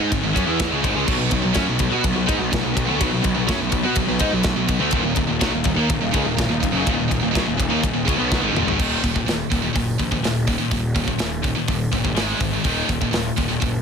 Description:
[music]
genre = heavy metal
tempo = 124 BPM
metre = 4/4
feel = straight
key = Eb minor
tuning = A4 = 440 Hz
[part]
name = overdriven electric guitar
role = riff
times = 0.0-8.8 s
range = Eb2 to F#4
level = -26 LUFS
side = equal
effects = none
[part]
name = scooped high-gain guitar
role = riff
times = 0.0-13.8 s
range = Eb2 to F#4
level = -24 LUFS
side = left 10 dB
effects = distortion
[part]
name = scooped high-gain guitar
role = riff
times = 0.0-13.8 s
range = Eb2 to F#4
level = -24 LUFS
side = right 14 dB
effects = distortion
[part]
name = fuzz picked electric bass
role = bass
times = 0.0-13.8 s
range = Eb1 to B2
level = -26 LUFS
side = equal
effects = overdrive
[part]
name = tight metal drum kit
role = drums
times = 0.1-13.7 s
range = crash cymbal, hi-hat, kick drum, ride cymbal, snare drum, toms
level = -24 LUFS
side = equal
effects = none
[part]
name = rich studio string section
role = sustained chords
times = 1.1-8.8 s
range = B3 to F5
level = -32 LUFS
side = left 1 dB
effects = none
[sound]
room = little or no reverb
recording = dense, heavily limited modern master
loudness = -18 LUFS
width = side -6 dB against mid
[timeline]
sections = 0.0-8.8 A section; 8.8-13.8 B section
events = drum fill 8.3-8.8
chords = 0.0 Ab5; 1.1 B5; 4.9 Ebm; 8.8 Eb5; 12.2 Ab5; 12.6 Ebm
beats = 0.11 0.59 | 1.07 1.55 2.03 2.51 | 3.00 3.48 3.96 4.44 | 4.92 5.40 5.88 6.37 | 6.85 7.33 7.81 8.30 | 8.78 9.26 9.75 10.23 | 10.71 11.20 11.68 12.16 | 12.65 13.13 13.61

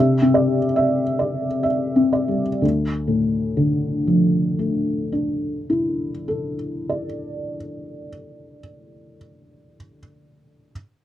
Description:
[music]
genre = neoclassical minimalist piano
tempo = 61 BPM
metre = 3/4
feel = rubato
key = D minor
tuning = A4 = 443 Hz
[part]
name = felt-muted upright piano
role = solo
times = 0.0-10.7 s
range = D2 to E5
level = -19 LUFS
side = left 1 dB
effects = none
[sound]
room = moderate booth ambience, RT60 0.2 s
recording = dry, close 1970s-style studio recording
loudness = -19 LUFS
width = side -12 dB against mid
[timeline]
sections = 0.0-2.6 A section; 2.6-8.5 B section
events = slowing down 0.0-2.6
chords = 0.0 Cadd9; 2.6 Dmadd9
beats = 0.76 1.66 | 2.63 3.60 4.58 | 5.56 6.55 7.54

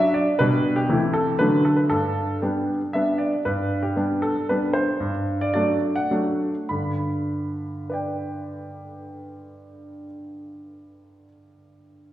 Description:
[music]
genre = classical-period piano sonatina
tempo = 100-120 BPM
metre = 3/4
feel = straight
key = G major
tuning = A4 = 441 Hz
[part]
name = clear grand piano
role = solo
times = 0.0-12.1 s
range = G2 to B5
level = -21 LUFS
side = equal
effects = none
[sound]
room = wet recital hall reverb, RT60 1.6 s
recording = heard from further back in the room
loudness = -21 LUFS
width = side -13 dB against mid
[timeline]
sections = 0.0-3.5 A section; 3.5-6.7 B section; 6.7-10.3 C section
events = slowing down 2.7-6.7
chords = 0.4 G/B; 0.9 Am7/C; 1.4 D; 1.9 G; 5.0 D/G; 6.7 G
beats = | 0.41 0.90 1.41 | 1.92 2.43 2.94 | 3.46 3.97 4.49 | 5.01 5.55 6.11 | 6.70 7.30 7.89 | 8.49 9.09 9.68

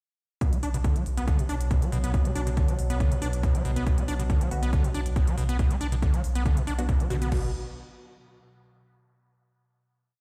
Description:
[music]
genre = driving peak-time techno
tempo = 139 BPM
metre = 4/4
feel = straight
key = B minor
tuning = A4 = 440 Hz
[part]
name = overdriven acid bass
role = riff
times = 0.4-7.5 s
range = B2 to D4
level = -34 LUFS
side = equal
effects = distortion, sidechain pumping, dub echo
[part]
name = analog drone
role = drone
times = 1.1-7.4 s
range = B2 to F#3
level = -39 LUFS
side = equal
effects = chorus, sidechain pumping
[part]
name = electronic hi-hat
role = drums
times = 0.4-7.3 s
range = none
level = -46 LUFS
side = equal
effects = sidechain pumping on hats
[part]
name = punchy analog drum machine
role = drums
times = 0.4-7.4 s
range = crash cymbal, kick drum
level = -27 LUFS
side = equal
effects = none
[part]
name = saturated sub bass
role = bass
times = 0.6-7.5 s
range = B1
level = -31 LUFS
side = equal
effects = overdrive, sidechain pumping, low-pass filter
[part]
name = filtered dub chord stab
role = stabs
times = 4.5-7.5 s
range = D3 to F#4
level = -38 LUFS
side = equal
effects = phaser, lush chorus, cassette tape, sidechain pumping, dub echo
[sound]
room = light reverb, digital ambience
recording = played on a big sound system in a bare room, stone room reverb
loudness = -26 LUFS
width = mono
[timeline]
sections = 0.4-7.3 groove; 7.3-9.0 final chord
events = none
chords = 0.4 Bm; 7.3 N.C.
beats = | 0.41 0.84 1.28 1.71 | 2.14 2.57 3.00 3.44 | 3.87 4.30 4.73 5.16 | 5.59 6.03 6.46 6.89 | 7.32

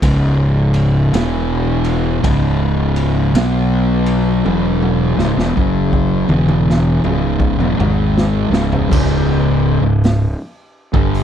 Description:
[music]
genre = stoner and doom metal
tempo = 54 BPM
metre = 4/4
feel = swing 64% on 8ths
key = C# minor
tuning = A4 = 440 Hz
[part]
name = fuzz guitar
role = riff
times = 0.0-11.2 s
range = C#2 to B3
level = -15 LUFS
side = equal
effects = distortion
[part]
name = fuzz fingered electric bass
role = bass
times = 0.0-11.2 s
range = C#1 to B1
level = -19 LUFS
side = equal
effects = overdrive
[part]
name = raw garage drum kit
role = drums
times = 0.0-11.2 s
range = crash cymbal, hi-hat, kick drum, ride cymbal, snare drum, toms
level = -20 LUFS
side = equal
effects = none
[sound]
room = light reverb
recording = none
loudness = -13 LUFS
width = side -9 dB against mid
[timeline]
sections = 0.0-8.9 A section; 8.9-11.2 B section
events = drum fill 4.5-8.9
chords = 0.0 C#5; 1.1 E5; 2.2 C#5; 3.4 B5; 4.5 C#m; 8.9 C#5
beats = | 0.03 1.14 2.25 3.36 | 4.47 5.58 6.69 7.80 | 8.91 10.02 11.13

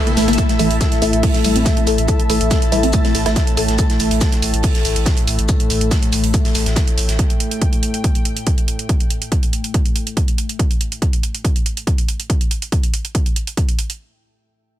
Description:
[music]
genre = driving peak-time techno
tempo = 141 BPM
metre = 4/4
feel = straight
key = unclear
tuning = A4 = 440 Hz
[part]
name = analog drone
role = drone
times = 0.0-10.6 s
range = A2 to A3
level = -24 LUFS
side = left 2 dB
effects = chorus, sidechain pumping
[part]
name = granular cloud pad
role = texture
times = 0.0-10.6 s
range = E4 to A5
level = -25 LUFS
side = left 1 dB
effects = built-in reverb, sidechain pumping
[part]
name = woody wave-folded pluck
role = riff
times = 0.1-3.6 s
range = G3 to A4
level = -22 LUFS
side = left 2 dB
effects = tube saturation, wide subtle chorus, sidechain pumping, ping-pong delay
[part]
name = techno drum kit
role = drums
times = 0.1-14.0 s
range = hi-hat, tambourine, toms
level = -24 LUFS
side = right 4 dB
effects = sidechain pumping on hats, sidechain pumping on perc, sidechain pumping on toms, sidechain pumping on cymbals
[part]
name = warm sub bass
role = bass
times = 0.2-7.2 s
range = A1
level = -20 LUFS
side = equal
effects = tube saturation, sidechain pumping, low-pass filter
[part]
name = oversized low-tuned drum kit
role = drums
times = 0.2-7.2 s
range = hi-hat, shaker, snare drum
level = -28 LUFS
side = equal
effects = sidechain pumping on hats, high-pass filter on hats, high-pass filter on snare, sidechain pumping on perc, high-pass filter on perc, high-pass filter on room
[part]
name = electronic kick drum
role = drums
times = 0.4-13.7 s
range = none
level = -17 LUFS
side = equal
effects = none
[part]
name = filtered dub chord stab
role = stabs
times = 0.6-3.4 s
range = E3 to E4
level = -24 LUFS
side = right 1 dB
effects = phaser, sidechain pumping, ping-pong delay
[sound]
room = digital ambience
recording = none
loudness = -15 LUFS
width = side -12 dB against mid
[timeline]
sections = 0.4-14.0 A section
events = fade-out on ambient pad 0.4-10.6; filter sweep on synth arpeggio sound 0.4-3.8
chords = 0.4 A5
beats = | 0.38 0.81 1.23 1.66 | 2.08 2.51 2.93 3.36 | 3.79 4.21 4.64 5.06 | 5.49 5.91 6.34 6.76 | 7.19 7.62 8.04 8.47 | 8.89 9.32 9.74 10.17 | 10.59 11.02 11.44 11.87 | 12.29 12.72 13.15 13.57

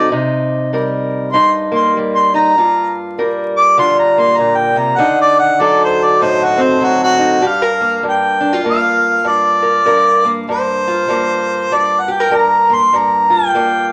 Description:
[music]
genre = acoustic country blues, solo or duo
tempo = 98 BPM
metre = 4/4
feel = swing 61% on 8ths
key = G minor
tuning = A4 = 440 Hz
[part]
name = warm harmonica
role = melody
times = 0.0-13.9 s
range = F#4 to D6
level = -15 LUFS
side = equal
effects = none
[part]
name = fingerpicked acoustic archtop guitar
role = accompaniment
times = 0.0-13.9 s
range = G2 to Bb4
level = -18 LUFS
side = equal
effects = none
[sound]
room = wet studio reverb, RT60 0.7 s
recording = vinyl crackle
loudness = -14 LUFS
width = mono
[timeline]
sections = 0.0-7.4 A section; 7.4-13.9 B section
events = harmonica solo 0.0-7.4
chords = 0.1 Cm7; 2.6 Gm7; 5.0 D7b9; 7.4 Gm7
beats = | 0.11 0.72 1.33 1.94 | 2.56 3.17 3.78 4.39 | 5.00 5.61 6.22 6.83 | 7.44 8.05 8.66 9.27 | 9.89 10.50 11.11 11.72 | 12.33 12.94 13.56

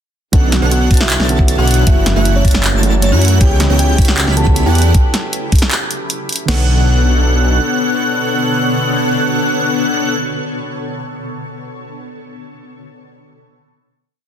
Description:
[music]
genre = future bass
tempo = 156 BPM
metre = 4/4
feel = half-time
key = B minor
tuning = A4 = 443 Hz
[part]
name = kalimba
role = melody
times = 0.3-10.2 s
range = C#4 to A5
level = -23 LUFS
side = equal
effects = sidechain pumping, tape echo
[part]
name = soft round pluck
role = accompaniment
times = 0.3-10.2 s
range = D3 to C#5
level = -23 LUFS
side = right 5 dB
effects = chorus, sidechain pumping, tape echo
[part]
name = shimmering ambient pad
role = sustained chords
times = 1.8-10.2 s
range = B2 to C#5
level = -23 LUFS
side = equal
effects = chorus, built-in reverb, phaser, sidechain pumping
[part]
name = airy dreamy lead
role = arpeggios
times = 0.3-10.2 s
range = F#6 to B6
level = -22 LUFS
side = equal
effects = chorus, phaser, sidechain pumping, tape echo
[part]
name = big bright polysynth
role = riff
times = 0.3-10.2 s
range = A3 to B5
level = -20 LUFS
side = left 1 dB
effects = chorus, sidechain pumping, tape echo
[part]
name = wide detuned saw bass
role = bass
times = 0.3-7.6 s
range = F#1 to F#2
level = -13 LUFS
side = equal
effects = chorus, sidechain pumping
[part]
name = big-room dance drum kit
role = drums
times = 0.3-6.4 s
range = handclaps, hi-hat, snare drum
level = -17 LUFS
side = equal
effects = small room reverb
[part]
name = trap drum kit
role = drums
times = 0.3-6.6 s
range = crash cymbal, kick drum, snare drum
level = -12 LUFS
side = equal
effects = small room reverb
[sound]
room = little or no reverb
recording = dense, heavily limited modern master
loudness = -11 LUFS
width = side -9 dB against mid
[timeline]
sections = 0.3-6.5 drop; 6.5-9.6 final chord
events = drop 0.3-6.5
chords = 0.3 Bm9; 1.9 F#m7; 3.4 C#m7b5; 4.8 Em9; 6.5 Bm9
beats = | 0.33 0.72 1.10 1.49 | 1.87 2.25 2.64 3.02 | 3.41 3.79 4.18 4.56 | 4.95 5.33 5.72 6.10 | 6.49 6.87 7.25 7.64 | 8.02 8.41 8.79 9.18

